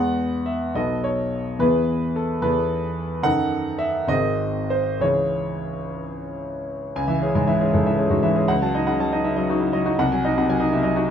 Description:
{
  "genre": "classical, romantic character piece for solo piano",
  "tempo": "60-83 BPM (dotted quarters)",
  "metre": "6/8",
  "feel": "rubato",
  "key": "E major, C# minor from 3.2 s",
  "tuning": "A4 = 440 Hz",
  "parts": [
    { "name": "bright grand piano", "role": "solo", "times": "0.0-11.1 s", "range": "G#1 to A5", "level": "-20 LUFS", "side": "equal", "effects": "none" }
  ],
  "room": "moderate large studio reverb, RT60 0.9 s",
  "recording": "none",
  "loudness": "-20 LUFS",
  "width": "side -8 dB against mid",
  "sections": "0.0-7.0 A section; 7.0-11.1 B section",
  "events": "none",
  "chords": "0.0 E; 0.8 B5; 1.6 E; 3.2 D#dim/F#; 4.1 G#; 5.0 C#m; 8.5 D#m7b5/C#; 10.0 G#7/B#",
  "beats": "0.75 | 1.60 2.43 | 3.25 4.09 | 5.03 6.02 | 6.97 7.74 | 8.49 9.26 | 10.00 10.72"
}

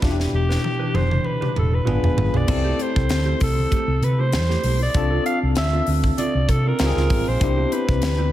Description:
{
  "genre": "polished 1980s jazz-funk pop",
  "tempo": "98 BPM",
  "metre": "4/4",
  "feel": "swing 54% on 16ths",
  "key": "unclear",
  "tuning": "A4 = 440 Hz",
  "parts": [
    { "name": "bell-like tine electric piano", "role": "accompaniment", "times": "0.0-8.3 s", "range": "B2 to A4", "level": "-26 LUFS", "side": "left 3 dB", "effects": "medium stereo tremolo, lush chorus" },
    { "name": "mellow electric guitar", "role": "riff", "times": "0.0-8.3 s", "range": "A3 to B4", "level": "-31 LUFS", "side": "right 7 dB", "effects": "wide subtle chorus" },
    { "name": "hollow-body short-scale fingered electric bass", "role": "bass", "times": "0.0-8.3 s", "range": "E1 to C3", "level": "-21 LUFS", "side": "equal", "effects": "none" },
    { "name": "crisp fusion drum kit", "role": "drums", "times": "0.0-8.2 s", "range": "crash cymbal, hi-hat, kick drum, snare drum, toms", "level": "-24 LUFS", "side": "equal", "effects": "none" },
    { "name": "congas", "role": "percussion", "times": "0.0-8.2 s", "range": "none", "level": "-37 LUFS", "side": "left 2 dB", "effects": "none" },
    { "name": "growling alto saxophone", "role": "melody", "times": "0.4-8.3 s", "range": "G4 to F5", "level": "-25 LUFS", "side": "equal", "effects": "diffuse ambient delay" }
  ],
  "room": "light reverb, small room ambience",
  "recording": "none",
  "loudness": "-18 LUFS",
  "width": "side -13 dB against mid",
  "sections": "0.0-2.5 A section; 2.5-8.3 B section",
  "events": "drum fill 0.0-2.5",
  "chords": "0.0 Em7; 1.9 G7b9; 2.5 Am7; 5.0 Csus4; 6.8 Dbmaj7; 7.4 Cmaj7",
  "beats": "| 0.03 0.64 1.26 1.87 | 2.49 3.10 3.72 4.34 | 4.95 5.57 6.18 6.80 | 7.41 8.03"
}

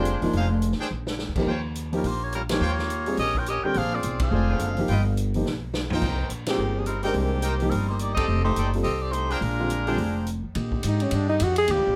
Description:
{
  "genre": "jazz, big band swing",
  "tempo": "212 BPM",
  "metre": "4/4",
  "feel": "swing 59% on 8ths",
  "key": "Bb mixolydian",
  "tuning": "A4 = 439 Hz",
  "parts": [
    { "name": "warm saxophone section", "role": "melody", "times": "0.0-10.4 s", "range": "Eb3 to G5", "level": "-30 LUFS", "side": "equal", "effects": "none" },
    { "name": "warm grand piano", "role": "accompaniment", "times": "0.0-10.0 s", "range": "D3 to Bb4", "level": "-30 LUFS", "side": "equal", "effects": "none" },
    { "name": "brilliant trumpet section", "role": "stabs", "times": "0.0-10.2 s", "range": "D4 to Ab5", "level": "-35 LUFS", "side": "equal", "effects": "none" },
    { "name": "upright bass", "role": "bass", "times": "0.0-12.0 s", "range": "E1 to Bb2", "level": "-29 LUFS", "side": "equal", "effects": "none" },
    { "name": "swinging big-band drum kit", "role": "drums", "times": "0.1-11.8 s", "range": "crash cymbal, hi-hat, kick drum, ride cymbal, snare drum, toms", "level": "-35 LUFS", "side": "equal", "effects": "none" },
    { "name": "clear saxophone section", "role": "sustained chords", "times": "10.5-12.0 s", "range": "Db3 to G4", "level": "-36 LUFS", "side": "equal", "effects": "none" },
    { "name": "breathy alto saxophone", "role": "melody", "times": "10.9-12.0 s", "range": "Db4 to Ab4", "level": "-25 LUFS", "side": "equal", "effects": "none" }
  ],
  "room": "light reverb",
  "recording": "none",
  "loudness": "-25 LUFS",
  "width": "mono",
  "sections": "0.0-10.6 A section; 10.6-12.0 B section",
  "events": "drum fill 0.9, 5.5-6.0; band accent 2.5, 4.2, 6.4, 8.1; alto saxophone solo 10.6-12.0",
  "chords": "0.3 Fm7; 0.9 Bb6; 1.5 Eb13; 3.8 Bb13; 4.9 G7alt; 6.0 Cm7; 8.3 F13; 9.4 Bb13",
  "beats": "0.06 | 0.34 0.62 0.91 1.19 | 1.48 1.76 2.05 2.33 | 2.62 2.90 3.18 3.47 | 3.75 4.04 4.32 4.60 | 4.89 5.17 5.45 5.74 | 6.02 6.30 6.59 6.87 | 7.16 7.44 7.72 8.01 | 8.29 8.57 8.86 9.14 | 9.42 9.71 9.99 10.27 | 10.55 10.84 11.12 11.40 | 11.68"
}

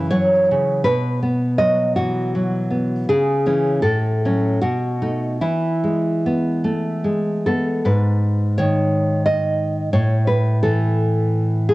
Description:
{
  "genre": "romantic piece for solo classical guitar",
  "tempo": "71-89 BPM",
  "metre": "3/4",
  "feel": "rubato",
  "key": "unclear",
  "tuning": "A4 = 439 Hz",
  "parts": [
    { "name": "nylon-string guitar", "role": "solo", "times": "0.0-11.7 s", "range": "F#2 to D#5", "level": "-17 LUFS", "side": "equal", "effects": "cassette tape" }
  ],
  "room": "light reverb",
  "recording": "home recording on cassette",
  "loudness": "-17 LUFS",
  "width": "side -19 dB against mid",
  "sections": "0.0-7.9 A section; 7.9-11.7 B section",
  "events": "none",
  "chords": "0.0 F#5; 0.9 B5; 3.1 C#m; 3.8 F#m/A; 4.6 B7; 5.4 E; 7.9 G#m; 10.0 A5",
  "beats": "0.12 | 0.85 1.59 2.33 | 3.08 3.83 4.60 | 5.40 6.23 7.05 | 7.86 8.59 9.29 | 9.97 10.66 11.36"
}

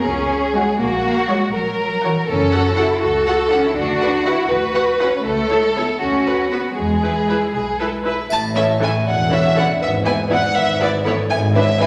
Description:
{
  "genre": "cinematic, playful, whimsical film cue",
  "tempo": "80 BPM (dotted quarters)",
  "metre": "6/8",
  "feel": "straight",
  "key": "A major",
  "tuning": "A4 = 440 Hz",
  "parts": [
    { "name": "rich chamber violin section", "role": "second line", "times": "0.0-11.9 s", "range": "E4 to B4", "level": "-22 LUFS", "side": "equal", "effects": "none" },
    { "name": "warm chamber cello section", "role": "bass", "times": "0.0-11.9 s", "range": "E2 to F#4", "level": "-24 LUFS", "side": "equal", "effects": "none" },
    { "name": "warm chamber double bass section", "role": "bass", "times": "0.1-11.9 s", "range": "E1 to E2", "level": "-27 LUFS", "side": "equal", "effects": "none" },
    { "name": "rich chamber violin section", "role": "melody", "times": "0.6-11.9 s", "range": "B4 to A5", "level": "-25 LUFS", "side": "equal", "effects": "none" },
    { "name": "rich chamber viola section", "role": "accompaniment", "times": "0.6-11.9 s", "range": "E3 to C#5", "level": "-28 LUFS", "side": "equal", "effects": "none" },
    { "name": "celesta", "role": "melody", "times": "8.3-11.9 s", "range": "A4 to E5", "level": "-26 LUFS", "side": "equal", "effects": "none" },
    { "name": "clear tuba", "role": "bass", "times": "8.3-11.9 s", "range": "E1 to A1", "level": "-31 LUFS", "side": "equal", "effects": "none" },
    { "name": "triangle", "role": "percussion", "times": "8.3-9.3 s", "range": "none", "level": "-42 LUFS", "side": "equal", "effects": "none" }
  ],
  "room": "wet scoring stage reverb, RT60 1.6 s",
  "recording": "none",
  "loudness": "-18 LUFS",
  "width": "mono",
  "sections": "0.0-8.3 A section; 8.3-11.9 B section",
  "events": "none",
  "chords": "0.0 F#5; 0.8 F#/A#; 2.3 F#m; 3.8 Bm/D; 5.3 A/C#; 6.0 Bm/D; 6.8 E; 8.3 A; 9.8 E/G#; 11.3 E7/G#",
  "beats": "0.06 | 0.80 1.53 | 2.27 3.02 | 3.76 4.51 | 5.25 6.01 | 6.77 7.53 | 8.30 9.05 | 9.80 10.55 | 11.30"
}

